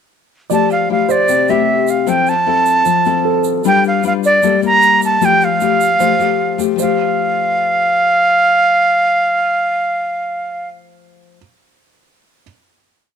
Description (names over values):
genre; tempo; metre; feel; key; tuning
bossa nova; 153 BPM; 4/4; straight; F major; A4 = 440 Hz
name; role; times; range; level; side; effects
breathy silver concert flute; melody; 0.5-10.7 s; D5 to Bb5; -13 LUFS; right 2 dB; none
nylon-string guitar; accompaniment; 0.5-11.4 s; C3 to B4; -17 LUFS; left 14 dB; none
warm grand piano; accompaniment; 0.5-12.4 s; A4 to D5; -21 LUFS; right 12 dB; none
egg shaker; percussion; 0.5-6.9 s; none; -31 LUFS; right 19 dB; none
room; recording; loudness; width
light reverb, small room ambience; 1960s-style stereo with parts hard left and right; -12 LUFS; side -7 dB against mid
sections
0.5-6.8 A section; 6.8-9.9 final chord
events
none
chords
0.5 Fmaj9; 3.6 G7; 4.4 Gm69; 5.2 Fmaj9; 6.8 Fadd9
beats
| 0.50 0.89 1.28 1.68 | 2.07 2.46 2.86 3.25 | 3.64 4.04 4.43 4.82 | 5.21 5.61 6.00 6.39 | 6.79 7.18 7.57 7.96 | 8.35 8.74 9.14 9.53